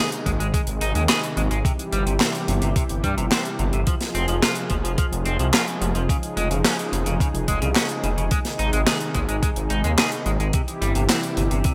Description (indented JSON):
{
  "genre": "synthwave",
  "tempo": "108 BPM",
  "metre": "4/4",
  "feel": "straight",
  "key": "unclear",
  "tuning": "A4 = 441 Hz",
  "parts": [
    { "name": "warm analog pad", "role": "sustained chords", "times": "0.0-11.7 s", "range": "C3 to Ab4", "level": "-30 LUFS", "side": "equal", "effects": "subtle chorus, sidechain pumping" },
    { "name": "clean electric guitar", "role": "riff", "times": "0.0-11.7 s", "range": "C3 to Ab4", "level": "-31 LUFS", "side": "equal", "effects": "subtle chorus, vintage 12-bit sampler grit, digital delay" },
    { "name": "tight funk drum kit", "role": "drums", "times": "0.1-11.7 s", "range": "handclaps, hi-hat, snare drum", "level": "-26 LUFS", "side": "equal", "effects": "gated reverb" },
    { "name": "detuned saw bass", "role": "bass", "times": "0.3-11.6 s", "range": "F1 to G2", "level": "-26 LUFS", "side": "equal", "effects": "chorus, sidechain pumping" },
    { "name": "electronic kick drum", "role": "drums", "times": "0.3-11.7 s", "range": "none", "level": "-25 LUFS", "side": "equal", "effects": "none" }
  ],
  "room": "light reverb, studio reverb",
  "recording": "bright 1980s-style digital production",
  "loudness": "-22 LUFS",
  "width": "mono",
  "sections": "0.0-11.7 A section",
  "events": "none",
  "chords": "0.0 Ab; 1.6 C/G; 3.9 Fm; 6.1 Dbadd9/F; 8.3 Ab; 10.5 C/G",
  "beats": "0.54 1.09 | 1.65 2.20 2.76 3.31 | 3.87 4.43 4.98 5.54 | 6.09 6.65 7.20 7.76 | 8.31 8.87 9.43 9.98 | 10.54 11.09 11.65"
}